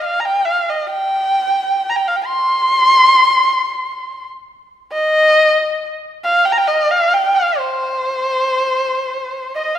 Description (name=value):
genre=chinese traditional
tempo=90 BPM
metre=4/4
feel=rubato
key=C yu mode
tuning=A4 = 440 Hz
part: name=dark erhu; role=solo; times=0.0-9.8 s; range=C5 to C6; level=-13 LUFS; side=equal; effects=none
room=moderate concert hall reverb, RT60 2.2 s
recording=recorded in a church or concert hall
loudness=-13 LUFS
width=side -10 dB against mid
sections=0.0-9.8 A section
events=none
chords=none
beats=0.25 0.93 1.60 | 2.28 2.95 3.60 4.27 | 4.93 5.58 6.23 6.88 | 7.54 8.21 8.88 9.57